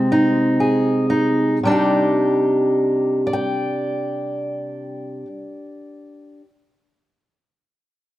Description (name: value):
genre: folk, solo fingerstyle acoustic guitar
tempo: 36-43 BPM (dotted quarters)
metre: 6/8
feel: straight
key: C minor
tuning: A4 = 439 Hz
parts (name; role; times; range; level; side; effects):
- fingerpicked steel-string acoustic guitar; solo; 0.0-6.4 s; C3 to G5; -18 LUFS; equal; none
room: moderate large studio reverb, RT60 1.3 s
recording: none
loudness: -16 LUFS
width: side -15 dB against mid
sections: 0.0-1.6 A section; 1.6-4.9 B section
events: slowing down 0.0-1.6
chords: 0.0 Ab/C; 1.6 Cmadd9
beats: 0.11 | 1.64 3.28